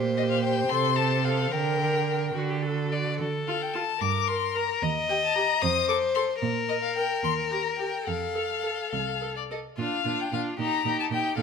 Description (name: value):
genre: quick classical-period movement for string quartet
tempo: 69-77 BPM (dotted quarters)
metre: 6/8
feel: rubato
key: G minor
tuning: A4 = 440 Hz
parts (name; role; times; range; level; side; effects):
- rich violin; second line; 0.0-11.4 s; F4 to Eb5; -29 LUFS; left 4 dB; none
- rich viola; accompaniment; 0.0-11.4 s; D4 to Bb4; -33 LUFS; right 4 dB; none
- rich cello; bass; 0.0-11.4 s; C2 to D3; -30 LUFS; right 6 dB; none
- rich violin; melody; 0.2-11.4 s; D5 to Eb6; -28 LUFS; left 9 dB; none
room: moderate recital hall reverb, RT60 1.5 s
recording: none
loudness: -24 LUFS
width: side -6 dB against mid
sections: 0.0-9.8 A section; 9.8-11.4 B section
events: none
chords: 0.0 Gm/Bb; 0.7 F/C; 1.5 Gm/D; 2.4 D; 3.2 Dm; 4.0 Gm; 4.8 Eb; 5.6 F; 6.4 Eb/Bb (rootless); 7.2 Eb; 8.1 F; 9.8 Bb; 10.6 Eb